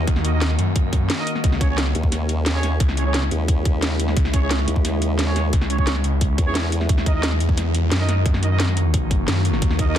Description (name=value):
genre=dark technical drum and bass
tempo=176 BPM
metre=4/4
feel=straight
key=Eb phrygian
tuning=A4 = 440 Hz
part: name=metallic inharmonic drone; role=sustained chords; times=0.0-10.0 s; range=Db3 to Gb4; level=-27 LUFS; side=left 2 dB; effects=chorus, built-in reverb, sidechain pumping
part: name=formant-sweep wobble bass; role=bass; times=0.0-6.9 s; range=Eb2 to Fb2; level=-22 LUFS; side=equal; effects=chorus
part: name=snarling distorted saw bass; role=bass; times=0.1-10.0 s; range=Db2 to Gb2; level=-21 LUFS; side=equal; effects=none
part: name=drum and bass drum kit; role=drums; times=0.1-10.0 s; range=hi-hat, snare drum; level=-25 LUFS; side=equal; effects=none
part: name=electronic kick drum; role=drums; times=0.1-9.9 s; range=none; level=-20 LUFS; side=equal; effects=none
part: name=clear brass ensemble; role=stabs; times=0.2-10.0 s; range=Db4 to Eb5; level=-29 LUFS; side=right 3 dB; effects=tape echo
room=digital ambience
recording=dense, heavily limited modern master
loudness=-18 LUFS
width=side -10 dB against mid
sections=0.0-6.9 A section; 6.9-10.0 A section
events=drop 0.0-6.9, 6.9-10.0; kick drops out 6.6-6.9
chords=0.0 Ebm; 1.4 Dbm; 6.9 Ebm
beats=| 0.07 0.41 0.76 1.10 | 1.44 1.78 2.12 2.46 | 2.80 3.14 3.48 3.83 | 4.17 4.51 4.85 5.19 | 5.53 5.87 6.21 6.55 | 6.89 7.23 7.58 7.92 | 8.26 8.60 8.94 9.28 | 9.62 9.96